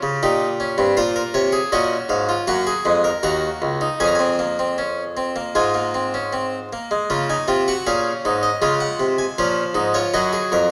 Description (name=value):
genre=classical, baroque-style 4-part fugue for harpsichord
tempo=79 BPM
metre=4/4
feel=straight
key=Db major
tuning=A4 = 441 Hz
part: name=harpsichord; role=solo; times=0.0-10.7 s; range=Db2 to Bb5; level=-20 LUFS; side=equal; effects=none
room=moderate recital hall reverb, RT60 1.5 s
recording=dark, warm production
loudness=-20 LUFS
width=mono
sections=0.0-7.1 A section; 7.1-10.7 B section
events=none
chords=0.0 Gdim/Bb; 1.0 Bbm; 2.5 Gb; 4.0 Db/F; 5.5 Ab; 7.1 Db; 10.1 Ab5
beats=0.23 | 0.97 1.72 2.48 3.23 | 4.00 4.77 5.55 6.32 | 7.10 7.87 8.63 9.39 | 10.15